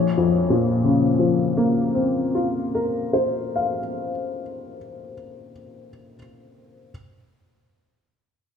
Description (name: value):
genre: neoclassical minimalist piano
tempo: 50 BPM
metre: 4/4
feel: rubato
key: Bb minor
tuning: A4 = 440 Hz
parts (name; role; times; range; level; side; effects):
- dark upright piano; solo; 0.0-6.9 s; Bb1 to F5; -20 LUFS; left 2 dB; none
room: wet scoring stage reverb, RT60 1.9 s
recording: recorded in a church or concert hall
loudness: -19 LUFS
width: side -7 dB against mid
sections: 0.0-4.7 A section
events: none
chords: 0.0 Bbmadd9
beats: 1.06 2.29 3.49